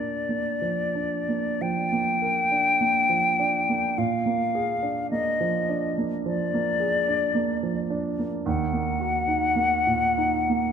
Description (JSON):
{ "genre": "classical, romantic duo for flute and grand piano", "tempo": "43-56 BPM", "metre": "4/4", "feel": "rubato", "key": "Bb major", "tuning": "A4 = 439 Hz", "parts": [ { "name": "hollow concert flute", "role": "melody", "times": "0.0-10.7 s", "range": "D5 to G5", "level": "-24 LUFS", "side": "left 4 dB", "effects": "none" }, { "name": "warm baby grand piano", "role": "accompaniment", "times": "0.0-10.7 s", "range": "Eb2 to Bb4", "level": "-26 LUFS", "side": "right 5 dB", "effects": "none" } ], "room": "moderate concert hall reverb, RT60 2.5 s", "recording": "none", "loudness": "-22 LUFS", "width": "side -7 dB against mid", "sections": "0.0-10.7 A section", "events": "none", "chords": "0.0 Bb; 4.0 Bb7; 8.5 Ebm", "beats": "0.28 1.62 2.81 | 3.97 5.11 6.25 7.37 | 8.46 9.57" }